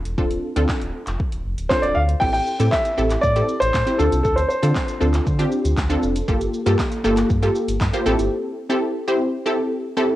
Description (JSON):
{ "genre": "dance-pop", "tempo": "118 BPM", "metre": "4/4", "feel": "straight", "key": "D minor", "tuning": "A4 = 440 Hz", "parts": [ { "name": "wide unison pluck", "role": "accompaniment", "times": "0.0-10.2 s", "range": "Bb3 to C5", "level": "-21 LUFS", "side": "equal", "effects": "sidechain pumping, plate reverb" }, { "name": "sub bass with octave", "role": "bass", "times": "0.0-8.3 s", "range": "D1 to D3", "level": "-22 LUFS", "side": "equal", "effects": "sidechain pumping" }, { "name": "deep house drum kit", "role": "drums", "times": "0.1-8.3 s", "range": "crash cymbal, handclaps, hi-hat, kick drum, shaker, snare drum", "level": "-25 LUFS", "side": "equal", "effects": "none" }, { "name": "warm grand piano", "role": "melody", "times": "1.7-5.0 s", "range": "A4 to G5", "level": "-20 LUFS", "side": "equal", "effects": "tape echo, plate reverb" } ], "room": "light reverb", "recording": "home recording on cassette", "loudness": "-18 LUFS", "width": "side -14 dB against mid", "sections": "0.0-2.2 A section; 2.2-10.2 B section", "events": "break 8.3-10.2", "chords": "0.0 Dm7; 2.2 Am7; 4.0 Dm7; 6.3 Gm9; 8.1 Am7" }